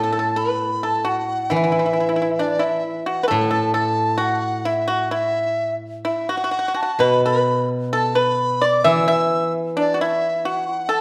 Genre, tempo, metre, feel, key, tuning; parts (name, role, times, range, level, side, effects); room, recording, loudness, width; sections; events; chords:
chinese traditional, Chinese chamber ensemble; 65 BPM; 2/4; rubato; A zhi mode; A4 = 441 Hz
reedy large dizi; melody; 0.0-11.0 s; D5 to E6; -24 LUFS; equal
pipa; second line; 0.0-11.0 s; D4 to E5; -24 LUFS; equal
steel-string zither; accompaniment; 0.0-11.0 s; A2 to E3; -25 LUFS; equal
wet recital hall reverb, RT60 1.4 s; -20 LUFS; mono
0.0-11.0 A section